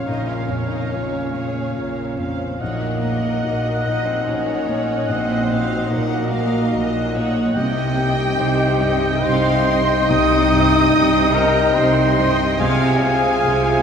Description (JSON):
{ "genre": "cinematic, emotional film score for orchestra", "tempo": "72 BPM", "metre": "3/4", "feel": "rubato", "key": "unclear", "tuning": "A4 = 440 Hz", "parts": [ { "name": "mellow duduk", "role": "melody", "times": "0.0-13.8 s", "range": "Bb3 to C5", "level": "-24 LUFS", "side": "left 2 dB", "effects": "none" }, { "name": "warm studio violin section", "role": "melody", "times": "0.0-13.8 s", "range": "Ab4 to Gb5", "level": "-29 LUFS", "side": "left 2 dB", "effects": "none" }, { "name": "clear oboe", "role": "second line", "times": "0.0-13.8 s", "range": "F5 to Ab5", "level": "-28 LUFS", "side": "right 2 dB", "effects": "none" }, { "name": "mellow hollow flute section", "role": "second line", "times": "0.0-13.8 s", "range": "Bb4 to Eb6", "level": "-27 LUFS", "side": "right 1 dB", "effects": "none" }, { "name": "rich studio violin section", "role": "second line", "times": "0.0-13.8 s", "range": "Bb4 to Eb6", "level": "-29 LUFS", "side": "left 1 dB", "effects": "none" }, { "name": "warm clarinet", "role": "second line", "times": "0.0-13.8 s", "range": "Db5 to F5", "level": "-27 LUFS", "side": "left 2 dB", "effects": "none" }, { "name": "felt-muted upright piano", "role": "accompaniment", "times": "0.0-13.8 s", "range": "Bb1 to Ab4", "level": "-25 LUFS", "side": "left 1 dB", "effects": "none" }, { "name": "warm studio viola section", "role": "accompaniment", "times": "0.0-13.8 s", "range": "Db4 to Ab5", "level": "-28 LUFS", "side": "equal", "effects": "none" }, { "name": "mellow French horn section", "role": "sustained chords", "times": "0.0-13.8 s", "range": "Db3 to F4", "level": "-26 LUFS", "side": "left 3 dB", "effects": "none" }, { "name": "clear studio cello section", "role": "bass", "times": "0.1-13.8 s", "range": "Bb2 to C3", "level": "-25 LUFS", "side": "right 2 dB", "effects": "none" }, { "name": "rich studio double bass section", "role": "bass", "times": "0.1-13.8 s", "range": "Bb1 to C2", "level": "-25 LUFS", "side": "right 3 dB", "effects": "none" } ], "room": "wet concert hall reverb, RT60 2.6 s", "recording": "none", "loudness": "-16 LUFS", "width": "side -7 dB against mid", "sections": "0.0-13.8 A section", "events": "none", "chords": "0.0 Bbm; 2.6 Ebm/Bb; 7.6 Cm; 12.6 Fm/C" }